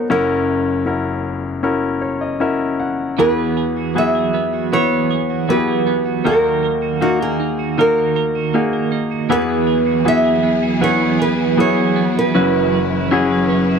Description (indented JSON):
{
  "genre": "pop ballad",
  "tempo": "78 BPM",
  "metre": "4/4",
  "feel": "straight",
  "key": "unclear",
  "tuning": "A4 = 435 Hz",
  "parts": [
    { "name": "nylon-string guitar", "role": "melody", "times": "0.0-13.8 s", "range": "F#4 to E5", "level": "-18 LUFS", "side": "right 3 dB", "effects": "slapback echo" },
    { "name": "clear baby grand piano", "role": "accompaniment", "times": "0.0-13.8 s", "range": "F#1 to F#5", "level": "-18 LUFS", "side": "left 4 dB", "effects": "none" },
    { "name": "twelve-string electric guitar", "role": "arpeggios", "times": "3.2-13.8 s", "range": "D#3 to B4", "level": "-22 LUFS", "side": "right 12 dB", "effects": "tremolo" },
    { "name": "warm studio string section", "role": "sustained chords", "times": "9.3-13.8 s", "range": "F#3 to B4", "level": "-21 LUFS", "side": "equal", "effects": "none" }
  ],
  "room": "light reverb",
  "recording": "dry, close 1970s-style studio recording",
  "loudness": "-15 LUFS",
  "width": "side -6 dB against mid",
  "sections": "0.0-3.2 A section; 3.2-13.8 B section",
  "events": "grand piano fill 1.6-3.2",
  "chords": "0.1 F#7; 3.2 Eadd9; 6.2 D#m; 9.3 Eadd9; 12.4 F#7sus4"
}